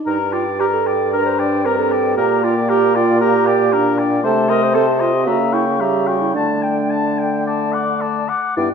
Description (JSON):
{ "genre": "quick classical-period movement for wind quintet", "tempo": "106-118 BPM", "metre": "4/4", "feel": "rubato", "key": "G minor", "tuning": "A4 = 440 Hz", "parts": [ { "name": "dark French horn", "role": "accompaniment", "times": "0.0-8.7 s", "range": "G3 to E4", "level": "-23 LUFS", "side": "left 3 dB", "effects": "none" }, { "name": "hollow concert flute", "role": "melody", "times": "0.1-8.6 s", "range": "G5 to D6", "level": "-23 LUFS", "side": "left 9 dB", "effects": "none" }, { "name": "warm oboe", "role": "second line", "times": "0.1-8.7 s", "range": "Bb4 to A5", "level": "-24 LUFS", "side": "left 4 dB", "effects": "none" }, { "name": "mellow clarinet", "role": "accompaniment", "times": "0.1-8.7 s", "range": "B3 to C5", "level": "-19 LUFS", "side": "right 7 dB", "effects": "none" }, { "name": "clear bassoon", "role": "bass", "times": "0.1-8.7 s", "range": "G2 to D3", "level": "-21 LUFS", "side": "equal", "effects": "none" } ], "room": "moderate recital hall reverb, RT60 1.4 s", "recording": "minimal, uncompressed stereo recording", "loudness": "-14 LUFS", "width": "side -6 dB against mid", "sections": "0.0-8.6 A section", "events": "none", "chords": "0.1 Gm; 2.2 Gm/Bb; 4.2 Adim/C; 5.3 C#dim7; 6.4 Dsus4" }